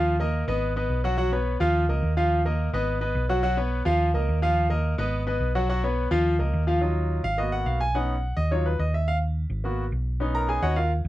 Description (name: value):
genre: latin, salsa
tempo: 213 BPM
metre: 4/4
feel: straight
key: Eb minor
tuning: A4 = 439 Hz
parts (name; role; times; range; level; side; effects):
- bright concert grand piano; accompaniment; 0.0-10.9 s; F3 to Bb5; -25 LUFS; equal; none
- hollow-body short-scale fingered electric bass; bass; 0.0-11.1 s; Ab1 to Eb2; -25 LUFS; equal; none
room: little or no reverb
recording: dark, warm production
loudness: -22 LUFS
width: side -15 dB against mid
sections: 0.0-6.8 A section; 6.8-11.1 B section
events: grand piano solo 6.8-11.1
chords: 0.0 Ebsus2; 0.6 Abm7; 1.2 Badd9; 1.7 Ebsus2; 2.9 Abm7; 3.4 Badd9; 4.0 Ebsus2; 5.1 Abm7; 5.7 Badd9; 6.3 Ebsus2; 6.8 Ebmadd9; 7.4 Abm7; 7.9 Badd9; 8.5 Ebmadd9; 9.6 Abm7; 10.2 Badd9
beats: | 0.06 0.34 0.62 0.90 | 1.18 1.47 1.75 2.03 | 2.31 2.59 2.88 3.16 | 3.44 3.72 4.00 4.28 | 4.57 4.85 5.13 5.41 | 5.69 5.97 6.26 6.54 | 6.82 7.10 7.38 7.67 | 7.95 8.23 8.51 8.79 | 9.08 9.36 9.64 9.92 | 10.21 10.49 10.77 11.05